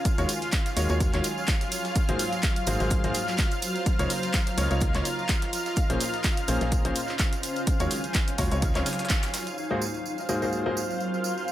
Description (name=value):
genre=piano house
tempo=126 BPM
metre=4/4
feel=swing 55% on 16ths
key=unclear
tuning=A4 = 440 Hz
part: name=analog string pad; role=sustained chords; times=0.0-11.5 s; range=F4 to F5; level=-33 LUFS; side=equal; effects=ensemble chorus, sidechain pumping
part: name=granular cloud pad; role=texture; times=0.0-11.5 s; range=Gb3 to Bb5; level=-33 LUFS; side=equal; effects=built-in reverb, sidechain pumping
part: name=breakbeat sampler-style drum kit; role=drums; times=0.1-9.5 s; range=hi-hat, shaker, snare drum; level=-39 LUFS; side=right 1 dB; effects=none
part: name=electronic kick drum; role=drums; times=0.1-9.2 s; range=none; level=-26 LUFS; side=equal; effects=none
part: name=punchy analog drum machine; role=drums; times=0.1-9.6 s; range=handclaps, hi-hat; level=-32 LUFS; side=equal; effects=none
part: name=tambourine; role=percussion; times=0.1-11.5 s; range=none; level=-38 LUFS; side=right 5 dB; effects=none
part: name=clear grand piano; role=riff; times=0.2-10.8 s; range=Ab2 to Db5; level=-31 LUFS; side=left 1 dB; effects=sidechain pumping, dub echo
part: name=organ-like FM bass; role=bass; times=0.2-8.8 s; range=Ab1 to Eb2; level=-28 LUFS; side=equal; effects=sidechain pumping
room=light reverb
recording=none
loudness=-24 LUFS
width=side -13 dB against mid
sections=0.0-9.6 A section; 9.6-11.5 B section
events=band accent 9.1; filter sweep on analog synth pad 9.6-11.5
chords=0.0 Ebm11; 2.0 Ab9; 3.6 Db69; 5.8 Bbm9; 7.4 Ebm11; 8.6 Dbmaj9; 9.6 Ab9